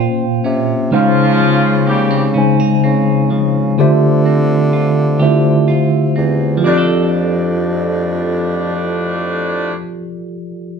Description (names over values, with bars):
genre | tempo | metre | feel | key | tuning
slow six-eight R&B | 42 BPM (dotted quarters) | 6/8 | straight | F major | A4 = 440 Hz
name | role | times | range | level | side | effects
clean electric guitar | second line | 0.0-10.3 s | Db3 to C5 | -21 LUFS | right 2 dB | none
mellow tine electric piano | accompaniment | 0.0-10.8 s | Bb2 to Ab5 | -14 LUFS | equal | medium stereo tremolo
warm bassoon | bass | 0.0-9.7 s | E2 to D3 | -21 LUFS | equal | none
warm horn section | stabs | 0.9-2.3, 6.6-9.7 s | A2 to G4 | -19 LUFS | left 1 dB | none
room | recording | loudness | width
moderate large studio reverb, RT60 0.9 s | band playing live in one room | -12 LUFS | side -6 dB against mid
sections
0.0-6.6 A section; 6.6-9.5 B section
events
none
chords
0.0 Bbmadd9; 0.9 Dbmaj9; 3.8 Dm11; 6.6 F6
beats
| 0.92 2.35 | 3.78 5.21 | 6.63 8.06